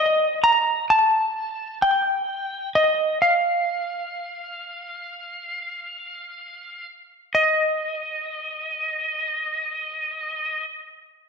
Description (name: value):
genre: rock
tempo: 65 BPM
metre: 4/4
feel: straight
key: unclear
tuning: A4 = 441 Hz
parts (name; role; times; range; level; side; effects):
- clean lap steel guitar; solo; 0.0-10.6 s; Eb5 to Bb5; -21 LUFS; equal; slapback echo
room: wet lush hall reverb, RT60 2.0 s, digital ambience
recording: big arena sound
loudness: -21 LUFS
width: side -5 dB against mid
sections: 0.0-7.3 A section; 7.3-11.1 B section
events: none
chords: none